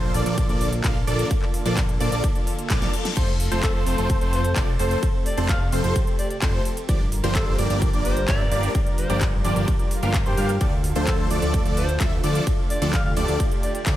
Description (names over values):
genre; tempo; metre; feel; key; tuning
EDM, festival progressive house; 129 BPM; 4/4; straight; F major; A4 = 441 Hz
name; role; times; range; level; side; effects
lush unison pad; sustained chords; 0.0-14.0 s; C3 to Bb4; -32 LUFS; equal; chorus, sidechain pumping
wide unison lead; arpeggios; 0.0-14.0 s; C5 to F5; -32 LUFS; equal; sidechain pumping, tape echo
big supersaw lead; riff; 0.0-14.0 s; F3 to F5; -27 LUFS; right 1 dB; phaser, sidechain pumping, tape echo
fat analog bass; bass; 0.0-14.0 s; F1 to G2; -26 LUFS; equal; sidechain pumping
big-room dance drum kit; drums; 0.1-14.0 s; crash cymbal, handclaps, hi-hat, ride cymbal, snare drum; -32 LUFS; equal; small room ambience
electronic kick drum; drums; 0.4-14.0 s; none; -23 LUFS; equal; small room ambience
reverse cymbal; sound effects; 2.5-3.2 s; none; -34 LUFS; left 6 dB; none
warm alto saxophone; melody; 3.6-13.8 s; G4 to F5; -32 LUFS; equal; tape echo
room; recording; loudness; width
light reverb, digital ambience; none; -20 LUFS; side -13 dB against mid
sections
0.0-14.0 A section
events
reverse cymbal 2.5-3.2; drum fill 2.7-3.2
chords
0.0 Bbmaj7; 3.2 F; 6.9 Gm7; 10.6 Dm